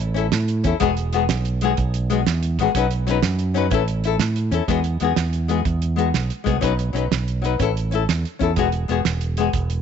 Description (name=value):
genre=highlife guitar band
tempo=124 BPM (dotted quarters)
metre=12/8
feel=straight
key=E major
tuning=A4 = 440 Hz
part: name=fingered electric bass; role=bass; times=0.0-9.8 s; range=E1 to A2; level=-22 LUFS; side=right 2 dB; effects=none
part: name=damped 70s drum kit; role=drums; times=0.0-9.8 s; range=hi-hat, kick drum, snare drum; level=-25 LUFS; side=right 6 dB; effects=none
part: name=flamenco guitar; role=accompaniment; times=0.1-9.5 s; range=F#3 to B4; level=-22 LUFS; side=left 10 dB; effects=none
room=light reverb, studio ambience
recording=1960s-style stereo with parts hard left and right, nothing above 7.9 kHz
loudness=-18 LUFS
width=side -8 dB against mid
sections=0.0-4.7 A section; 4.7-9.8 B section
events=none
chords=0.0 A; 0.8 Eadd9; 2.7 Badd9; 3.7 A; 4.7 Eadd9; 6.6 Badd9; 7.6 A; 8.6 Eadd9